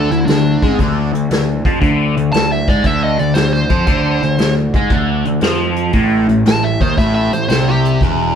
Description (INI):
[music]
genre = blues rock power trio and southern rock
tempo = 116 BPM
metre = 4/4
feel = swing 68% on 8ths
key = unclear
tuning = A4 = 440 Hz
[part]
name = dark smooth lead guitar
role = melody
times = 0.0-8.0 s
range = D4 to A5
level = -19 LUFS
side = right 1 dB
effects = overdrive
[part]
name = overdriven electric guitar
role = riff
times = 0.0-8.4 s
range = E2 to Ab3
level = -16 LUFS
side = left 1 dB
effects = phaser
[part]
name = fuzz picked electric bass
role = bass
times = 0.0-8.3 s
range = E1 to Ab2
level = -19 LUFS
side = equal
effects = overdrive
[part]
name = vintage brush drum kit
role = drums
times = 0.1-8.2 s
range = hi-hat, kick drum, snare drum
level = -18 LUFS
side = equal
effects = none
[sound]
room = moderate studio reverb, RT60 1.0 s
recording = band playing live in one room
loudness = -12 LUFS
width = side -8 dB against mid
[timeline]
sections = 0.0-8.4 A section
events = none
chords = 0.0 Ddim; 5.9 Am